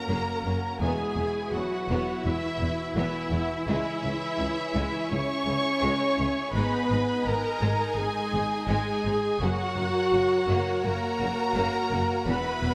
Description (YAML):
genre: cinematic, epic orchestral film score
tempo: 84 BPM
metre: 4/4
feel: straight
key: unclear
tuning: A4 = 440 Hz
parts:
  - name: rich symphonic violin section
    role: melody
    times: 0.0-12.7 s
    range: E5 to C#6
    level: -36 LUFS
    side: equal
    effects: none
  - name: rich symphonic violin section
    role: second line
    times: 0.0-12.7 s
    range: G#3 to F#4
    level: -39 LUFS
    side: equal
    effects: none
  - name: rich studio viola section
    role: accompaniment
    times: 0.0-12.7 s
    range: E4 to C#5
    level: -33 LUFS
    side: equal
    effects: none
  - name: mellow French horn section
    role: sustained chords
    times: 0.0-12.7 s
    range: E3 to A#4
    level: -34 LUFS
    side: equal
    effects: none
  - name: rich studio string section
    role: sustained chords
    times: 0.0-12.7 s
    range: C#4 to G#5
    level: -38 LUFS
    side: equal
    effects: none
  - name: rich symphonic cello section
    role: bass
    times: 0.1-12.7 s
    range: C#2 to G#2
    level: -35 LUFS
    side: equal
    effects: none
  - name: rich symphonic double bass section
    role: bass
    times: 0.1-12.7 s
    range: E1 to C#2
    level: -36 LUFS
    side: equal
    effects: none
room: wet scoring stage reverb, RT60 1.6 s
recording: none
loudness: -27 LUFS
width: mono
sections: 0.0-12.7 A section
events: none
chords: 0.0 F#; 0.8 Esus2; 3.7 C#m; 6.5 G#m; 9.4 F#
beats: 0.09 | 0.81 1.52 2.24 2.96 | 3.68 4.39 5.11 5.83 | 6.54 7.26 7.98 8.70 | 9.41 10.13 10.84 11.56 | 12.28